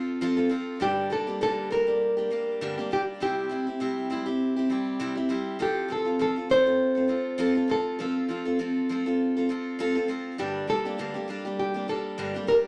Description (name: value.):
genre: acoustic pop.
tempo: 100 BPM.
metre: 4/4.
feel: swing 55% on 16ths.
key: F major.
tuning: A4 = 440 Hz.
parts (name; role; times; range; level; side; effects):
picked steel-string acoustic guitar; accompaniment; 0.0-12.7 s; G2 to A4; -30 LUFS; equal; none.
nylon-string guitar; melody; 0.8-12.6 s; G4 to C5; -29 LUFS; equal; none.
room: wet club reverb, RT60 0.5 s.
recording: none.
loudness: -27 LUFS.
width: mono.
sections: 0.0-12.7 A section.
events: none.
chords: 0.0 F; 0.8 Gm; 3.2 C; 5.6 F; 10.4 Gm.